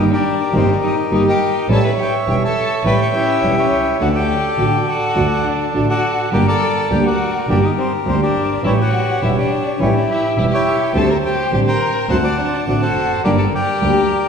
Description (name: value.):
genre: tango.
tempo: 104 BPM.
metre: 4/4.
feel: rubato.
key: G harmonic minor.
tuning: A4 = 441 Hz.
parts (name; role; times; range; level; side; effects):
bandoneon; melody; 0.0-14.3 s; Eb4 to D6; -18 LUFS; left 1 dB; none.
nylon-string guitar; accompaniment; 0.0-14.0 s; D3 to G4; -19 LUFS; right 1 dB; none.
warm double bass; bass; 0.0-14.1 s; E1 to D2; -21 LUFS; right 2 dB; none.
warm violin; second line; 0.1-14.3 s; C4 to D5; -23 LUFS; left 3 dB; slapback echo.
room: wet scoring stage reverb, RT60 2.0 s.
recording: heard from further back in the room.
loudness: -14 LUFS.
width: side -6 dB against mid.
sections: 0.0-14.3 A section.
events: none.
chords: 0.0 Eb/G; 1.7 A7; 4.0 D; 6.3 Gm; 8.6 A7; 10.9 D7sus4; 12.1 D7; 13.2 Gm.